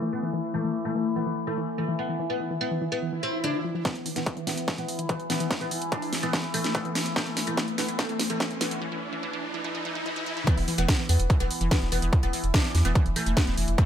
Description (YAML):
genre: psychedelic trance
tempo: 145 BPM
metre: 4/4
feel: straight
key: unclear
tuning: A4 = 445 Hz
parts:
  - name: oud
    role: melody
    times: 0.0-13.9 s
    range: A3 to D4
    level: -31 LUFS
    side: left 2 dB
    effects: phaser, sidechain pumping, low-pass filter, dub echo
  - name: overtone-sweeping drone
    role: sustained chords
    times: 0.0-13.9 s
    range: E3 to E4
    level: -35 LUFS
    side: left 1 dB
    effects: chorus, built-in reverb, sidechain pumping
  - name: wide unison pluck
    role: riff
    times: 0.0-13.8 s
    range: D3 to E4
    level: -33 LUFS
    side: moving between left 4 dB and right 4 dB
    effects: auto-pan, sidechain pumping, dub echo
  - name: swell and riser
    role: sound effects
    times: 3.1-10.5 s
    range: none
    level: -36 LUFS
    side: equal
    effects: none
  - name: electronic kick drum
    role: drums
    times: 3.9-13.9 s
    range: none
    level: -24 LUFS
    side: equal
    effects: distortion, overdrive, high-pass filter on kick, studio reverb
  - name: techno drum kit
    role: drums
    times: 3.9-13.9 s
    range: hi-hat, snare drum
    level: -30 LUFS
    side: right 1 dB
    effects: overdrive, low-pass filter on snare, studio reverb, low-pass filter on hats
  - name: round analog bass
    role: bass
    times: 4.0-13.8 s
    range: E1 to E2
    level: -25 LUFS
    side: equal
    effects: high-pass filter
room: digital ambience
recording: high-pass filter, low-pass filter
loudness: -24 LUFS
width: side -9 dB against mid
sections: 0.0-3.9 A section; 3.9-10.5 B section; 10.5-13.9 C section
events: filter sweep 0.0-3.9; swell 3.1-3.9; build-up 3.9-10.5; drum fill 3.9-8.8; filter sweep on synth arpeggio sound 3.9-10.5; filter sweep on oud 3.9-10.5; riser 5.2-10.5; break 8.8-10.5; drop 10.5-13.9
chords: 0.0 Dsus2 (rootless); 3.9 E5